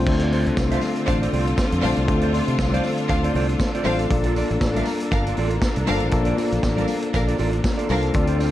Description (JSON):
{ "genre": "disco", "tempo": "119 BPM", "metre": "4/4", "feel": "swing 56% on 16ths", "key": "unclear", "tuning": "A4 = 440 Hz", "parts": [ { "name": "mellow tine electric piano", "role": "accompaniment", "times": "0.0-8.5 s", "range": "A3 to D5", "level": "-24 LUFS", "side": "left 3 dB", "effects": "none" }, { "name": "bright studio string section", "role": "sustained chords", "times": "0.0-8.5 s", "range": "D3 to A4", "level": "-28 LUFS", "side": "equal", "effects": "none" }, { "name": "fingered electric bass", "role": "bass", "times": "0.0-8.5 s", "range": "G1 to C3", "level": "-23 LUFS", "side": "equal", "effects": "none" }, { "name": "clean electric guitar", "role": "accompaniment", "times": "0.1-8.5 s", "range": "F4 to E5", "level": "-30 LUFS", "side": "right 7 dB", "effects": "none" }, { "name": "vintage drum kit", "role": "drums", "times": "0.1-8.5 s", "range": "crash cymbal, hi-hat, kick drum, snare drum", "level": "-26 LUFS", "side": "equal", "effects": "none" }, { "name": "congas", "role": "percussion", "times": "0.1-8.5 s", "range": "none", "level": "-34 LUFS", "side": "left 5 dB", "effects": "none" }, { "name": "tambourine", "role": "percussion", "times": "0.3-8.5 s", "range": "none", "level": "-44 LUFS", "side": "right 7 dB", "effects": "none" }, { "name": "warm studio violin section", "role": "second line", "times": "0.7-8.1 s", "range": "D4 to F5", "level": "-28 LUFS", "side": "equal", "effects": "none" } ], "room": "light reverb, small room reverb", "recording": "dark, warm production", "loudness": "-19 LUFS", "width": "side -13 dB against mid", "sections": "0.1-8.5 A section", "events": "none", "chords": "0.1 Dm7; 4.1 Bbmaj7" }